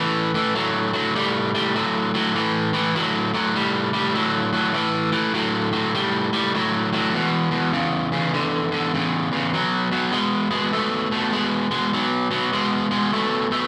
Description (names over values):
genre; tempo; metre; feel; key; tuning
blues; 100 BPM; 4/4; swing 64% on 8ths; unclear; A4 = 440 Hz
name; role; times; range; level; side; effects
overdriven semi-hollow guitar; solo; 0.0-13.7 s; E2 to A3; -22 LUFS; equal; slapback echo
room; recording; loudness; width
light reverb; live gig heard through the venue's PA, club reverb; -22 LUFS; mono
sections
0.0-13.7 A section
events
none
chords
0.0 A5; 7.1 E5; 9.5 B5